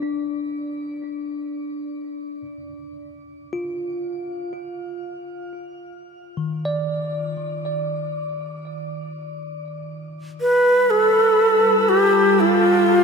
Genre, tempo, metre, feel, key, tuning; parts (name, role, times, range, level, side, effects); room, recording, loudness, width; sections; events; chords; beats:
ambient; free time; A4 = 440 Hz
bell-like tine electric piano; arpeggios; 0.0-10.4 s; Eb3 to D5; -28 LUFS; moving between left 5 dB and right 3 dB; auto-pan, tape echo
breathy shakuhachi; melody; 10.4-13.0 s; F4 to B4; -14 LUFS; equal; tape echo
analog drone; drone; 10.9-13.0 s; G3 to F4; -24 LUFS; right 2 dB; chorus
wet shimmer reverb, RT60 7.1 s; -18 LUFS; side -5 dB against mid
0.0-10.4 A section; 10.4-13.0 A section
fade-out on tine electric piano 0.0-10.4
0.0 N.C.; 2.4 Ebsus2; 10.4 G7(no3)
free time